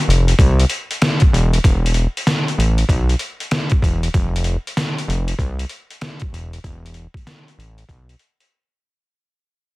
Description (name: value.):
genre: hip hop, boom-bap hip-hop.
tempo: 96 BPM.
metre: 4/4.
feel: swing 63% on 16ths.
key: unclear.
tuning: A4 = 440 Hz.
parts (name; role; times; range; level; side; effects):
fat analog bass; bass; 0.1-8.2 s; E1 to C2; -17 LUFS; equal; none.
trip hop sampler-style drum kit; drums; 0.1-8.5 s; hi-hat, kick drum, snare drum; -18 LUFS; equal; overdrive.
room: little or no reverb.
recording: dense, heavily limited modern master, vinyl crackle.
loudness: -15 LUFS.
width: side -21 dB against mid.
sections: 0.0-9.1 A section.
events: fade-out 0.0-9.1; break 8.5-9.1.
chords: none.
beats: 0.39 1.01 | 1.64 2.26 2.89 3.51 | 4.14 4.76 5.39 6.01 | 6.64 7.26 7.89.